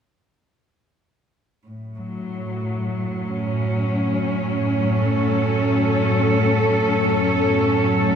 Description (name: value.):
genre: ambient.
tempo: free time.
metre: none.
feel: none.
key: F# minor.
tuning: A4 = 440 Hz.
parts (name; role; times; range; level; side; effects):
analog drone; drone; 2.0-8.2 s; F#2 to F#3; -30 LUFS; left 1 dB; none.
muted symphonic cello section; sustained chords; 1.7-8.2 s; A2 to A4; -19 LUFS; equal; none.
bronze singing bowl; arpeggios; 2.0-8.2 s; A2 to B3; -37 LUFS; right 2 dB; none.
room: wet huge ambient reverb, RT60 8.4 s.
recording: none.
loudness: -18 LUFS.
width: side -7 dB against mid.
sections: 1.7-8.2 A section.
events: none.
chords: 1.7 F#m.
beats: free time.